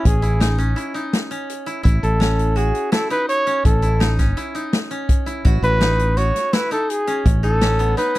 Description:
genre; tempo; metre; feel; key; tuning
progressive instrumental, band music in an uneven meter; 167 BPM; 5/4; straight; A lydian; A4 = 440 Hz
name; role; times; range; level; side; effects
breathy trumpet; melody; 0.0-8.2 s; G#4 to C#5; -20 LUFS; equal; none
koto; arpeggios; 0.0-8.2 s; B3 to F#4; -26 LUFS; equal; none
fretless electric bass; bass; 0.1-7.9 s; A1; -18 LUFS; equal; none
swinging big-band drum kit; drums; 0.1-8.2 s; hi-hat, kick drum, snare drum; -20 LUFS; equal; none
room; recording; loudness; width
little or no reverb; dry, close 1970s-style studio recording; -16 LUFS; side -17 dB against mid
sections
0.0-8.2 A section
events
none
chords
0.0 A; 5.5 B/A

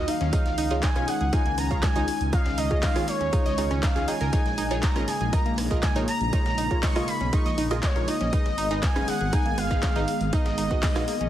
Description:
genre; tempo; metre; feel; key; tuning
progressive house; 120 BPM; 4/4; straight; unclear; A4 = 439 Hz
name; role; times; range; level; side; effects
expressive portamento lead; melody; 0.0-11.3 s; Db5 to Db6; -30 LUFS; equal; wide subtle chorus, sidechain pumping, digital delay
soft supersaw; second line; 0.0-11.3 s; Db5 to Db6; -36 LUFS; left 1 dB; sidechain pumping, digital delay
airy breathy pad; sustained chords; 0.0-11.3 s; Db3 to Ab4; -32 LUFS; left 1 dB; chorus, sidechain pumping
analog pluck; arpeggios; 0.0-11.3 s; Bb3 to Eb5; -33 LUFS; right 1 dB; chorus, sidechain pumping, digital delay
wide unison pluck; stabs; 0.0-11.0 s; Eb4 to Ab5; -33 LUFS; right 3 dB; sidechain pumping, digital delay
dark detuned saw bass; bass; 0.0-11.3 s; Gb1 to Eb2; -30 LUFS; equal; tube saturation, sidechain pumping
breakbeat sampler-style drum kit; drums; 0.1-11.2 s; hi-hat, snare drum; -41 LUFS; equal; none
house drum kit; drums; 0.1-11.3 s; handclaps, hi-hat, rim click; -34 LUFS; equal; overdrive
electronic kick drum; drums; 0.3-10.9 s; none; -24 LUFS; equal; overdrive
room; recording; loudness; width
light reverb; heavily compressed radio sound, multiband compression; -22 LUFS; side -12 dB against mid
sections
0.0-11.3 A section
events
none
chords
0.3 Dbadd9; 4.3 Bbm7; 8.3 Abm

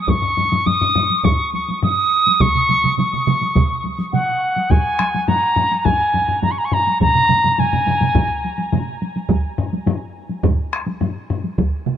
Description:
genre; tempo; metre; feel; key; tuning
japanese traditional, taiko drum ensemble; 104 BPM; 4/4; straight; Ab suspended pentatonic; A4 = 440 Hz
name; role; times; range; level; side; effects
wooden piccolo; melody; 0.0-8.7 s; Gb5 to Eb6; -17 LUFS; equal; none
solo taiko drums; percussion; 0.1-11.4 s; none; -22 LUFS; left 4 dB; none
taiko ensemble; percussion; 0.1-11.7 s; none; -23 LUFS; left 1 dB; none
taiko ensemble; percussion; 0.1-11.7 s; none; -20 LUFS; right 2 dB; none
taiko ensemble; percussion; 2.4-12.0 s; none; -22 LUFS; right 7 dB; none
room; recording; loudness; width
moderate huge ambient reverb, RT60 6.8 s; none; -15 LUFS; side -9 dB against mid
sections
0.0-9.3 A section; 9.3-12.0 B section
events
none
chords
none

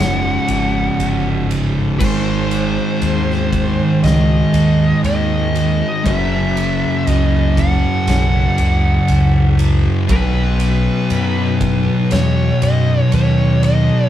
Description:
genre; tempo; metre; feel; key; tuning
stoner and doom metal; 59 BPM; 4/4; straight; unclear; A4 = 440 Hz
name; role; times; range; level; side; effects
fuzz lead guitar; melody; 0.0-14.1 s; B4 to F#5; -22 LUFS; equal; distortion
thick fuzz guitar; riff; 0.0-14.1 s; C#2 to B3; -18 LUFS; left 4 dB; distortion
thick fuzz guitar; riff; 0.0-14.1 s; C#2 to B3; -19 LUFS; right 5 dB; distortion
picked electric bass; bass; 0.0-13.9 s; F#1 to F#2; -18 LUFS; equal; overdrive
oversized low-tuned drum kit; drums; 0.0-13.9 s; crash cymbal, kick drum, ride cymbal, snare drum; -25 LUFS; equal; none
room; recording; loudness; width
moderate studio reverb, RT60 0.5 s; band playing live in one room; -13 LUFS; side -11 dB against mid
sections
0.0-14.1 A section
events
none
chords
0.0 C#5; 2.0 G#; 6.1 F#5; 10.1 B

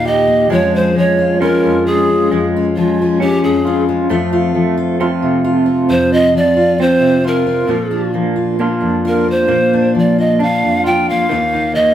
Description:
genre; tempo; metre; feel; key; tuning
acoustic folk duo or small band; 67 BPM; 4/4; straight; unclear; A4 = 440 Hz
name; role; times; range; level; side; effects
breathy bright pan flute; melody; 0.0-11.9 s; F4 to G5; -14 LUFS; right 1 dB; none
fingerpicked steel-string acoustic guitar; accompaniment; 0.0-11.9 s; Eb2 to G4; -16 LUFS; left 2 dB; none
electric guitar through a small old amp; arpeggios; 0.0-11.9 s; Eb3 to G4; -17 LUFS; right 2 dB; tremolo
room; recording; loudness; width
wet studio reverb, RT60 0.5 s; heard from further back in the room; -11 LUFS; side -10 dB against mid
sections
0.0-11.9 A section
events
pan flute solo 0.0-11.9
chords
0.0 Eb; 0.5 Db/F; 4.1 F; 7.7 Bb; 11.3 Eb5

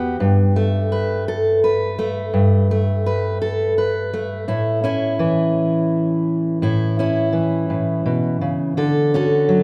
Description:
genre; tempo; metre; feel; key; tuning
folk, solo fingerstyle acoustic guitar; 56 BPM (dotted quarters); 6/8; straight; A mixolydian; A4 = 440 Hz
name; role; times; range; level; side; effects
fingerpicked steel-string acoustic guitar; solo; 0.0-9.6 s; E2 to B4; -19 LUFS; equal; none
room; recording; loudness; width
wet recital hall reverb, RT60 1.7 s; recorded in a church or concert hall; -19 LUFS; mono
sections
0.0-4.5 A section; 4.5-9.6 B section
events
none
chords
0.2 Gsus2; 4.5 A; 8.8 Dmaj7

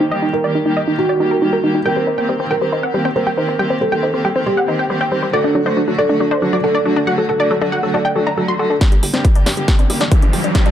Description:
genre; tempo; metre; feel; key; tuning
uplifting trance; 138 BPM; 4/4; straight; G harmonic minor; A4 = 440 Hz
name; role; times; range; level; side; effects
wide unison pluck; melody; 0.0-10.7 s; C4 to C6; -19 LUFS; equal; cassette tape, sidechain pumping, tape echo
felt-muted upright piano; second line; 0.0-8.7 s; F#4 to D5; -20 LUFS; right 2 dB; digital delay
rich symphonic string section; sustained chords; 0.0-10.7 s; D3 to G4; -22 LUFS; right 1 dB; sidechain pumping, low-pass filter
analog pluck; arpeggios; 1.9-10.7 s; F#3 to G4; -23 LUFS; left 4 dB; chorus, sidechain pumping, tape echo
big-room dance drum kit; drums; 8.8-10.7 s; hi-hat, snare drum; -22 LUFS; equal; high-pass filter on snare, low-pass filter on snare, high-pass filter on hats, low-pass filter on hats
electronic kick drum; drums; 8.8-10.6 s; none; -12 LUFS; equal; none
riser; sound effects; 9.6-10.7 s; none; -23 LUFS; right 1 dB; none
plucky analog bass; bass; 9.0-10.5 s; G1 to G2; -26 LUFS; equal; sidechain pumping, high-pass filter
room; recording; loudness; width
light reverb, digital ambience; dark, warm production; -14 LUFS; side -10 dB against mid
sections
0.0-8.8 A section; 8.8-10.7 B section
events
filter sweep on synth pluck 0.0-8.8, 8.8-10.7; build-up 8.8-10.7; drum fill 8.8-10.7; riser 9.6-10.7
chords
0.0 Eb; 1.9 Cm7; 5.3 D; 8.8 Gm

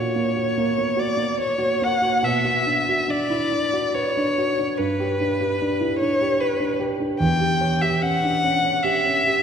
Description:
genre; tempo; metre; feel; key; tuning
classical, romantic duo for violin and grand piano; 66-76 BPM; 3/4; rubato; B minor; A4 = 440 Hz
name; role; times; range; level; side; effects
warm violin; melody; 0.0-9.4 s; B4 to G5; -21 LUFS; left 2 dB; none
dark grand piano; accompaniment; 0.0-9.4 s; E2 to C#5; -23 LUFS; right 2 dB; none
room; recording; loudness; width
wet concert hall reverb, RT60 2.5 s; none; -19 LUFS; side -7 dB against mid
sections
0.0-9.4 A section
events
none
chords
0.0 F#/A#; 2.2 Bm; 4.8 G; 7.2 C#dim/E

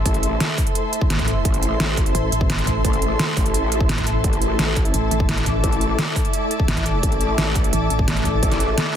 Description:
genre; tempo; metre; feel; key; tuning
dark technical drum and bass; 172 BPM; 4/4; straight; A minor; A4 = 436 Hz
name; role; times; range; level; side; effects
swarming drone; sustained chords; 0.0-9.0 s; A3 to D5; -28 LUFS; right 1 dB; built-in reverb, vintage 12-bit sampler grit, sidechain pumping
pulsing pluck wobble bass; bass; 0.0-8.4 s; A1; -22 LUFS; equal; chorus
ethereal airy pad; texture; 0.0-9.0 s; A4 to D6; -25 LUFS; left 2 dB; ensemble chorus, built-in reverb, sidechain pumping
growl bass; bass; 0.1-8.8 s; A1; -24 LUFS; equal; chorus, overdrive, sidechain pumping
dubstep drum kit; drums; 0.1-8.8 s; hi-hat, snare drum; -23 LUFS; right 1 dB; none
electronic kick drum; drums; 0.1-8.5 s; none; -22 LUFS; equal; none
room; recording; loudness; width
light reverb, digital ambience; dense, heavily limited modern master; -17 LUFS; side -9 dB against mid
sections
0.0-9.0 A section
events
none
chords
0.0 Am

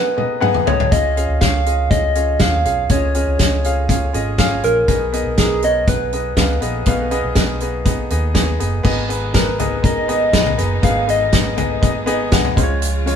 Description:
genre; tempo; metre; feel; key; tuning
piano-driven pop; 121 BPM; 4/4; straight; unclear; A4 = 440 Hz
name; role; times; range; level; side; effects
soft struck synth lead; melody; 0.0-12.1 s; Ab4 to F5; -20 LUFS; equal; chorus
bright upright piano; accompaniment; 0.0-13.2 s; Ab2 to Gb5; -21 LUFS; left 1 dB; none
loose indie drum kit; drums; 0.2-13.2 s; crash cymbal, hi-hat, kick drum, snare drum, toms; -18 LUFS; equal; none
vintage muted fingered electric bass; bass; 0.9-13.2 s; Gb1 to Eb2; -22 LUFS; right 1 dB; none
rich studio string section; sustained chords; 8.9-13.2 s; Cb3 to F4; -30 LUFS; equal; none
room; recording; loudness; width
light reverb; band playing live in one room; -14 LUFS; side -8 dB against mid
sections
0.0-8.8 A section; 8.8-13.2 B section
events
drum fill 0.0-0.9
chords
0.0 Abm/Cb; 0.9 Db; 4.9 Abm; 12.6 Db

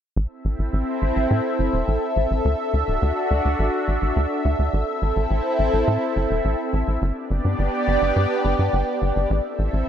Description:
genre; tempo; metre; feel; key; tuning
synthwave; 105 BPM; 4/4; straight; A dorian; A4 = 440 Hz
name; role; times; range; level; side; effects
lush unison pad; sustained chords; 0.5-9.9 s; B3 to E5; -22 LUFS; equal; chorus, phaser
tight sequencer bass; bass; 0.2-9.8 s; D1 to A2; -22 LUFS; equal; tube saturation
room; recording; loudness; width
light reverb, digital ambience; none; -20 LUFS; side -9 dB against mid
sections
0.2-9.9 A section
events
filter sweep on analog synth bass 0.2-9.9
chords
0.2 Am; 2.4 Dadd9; 4.7 Am; 7.0 G; 9.3 Am

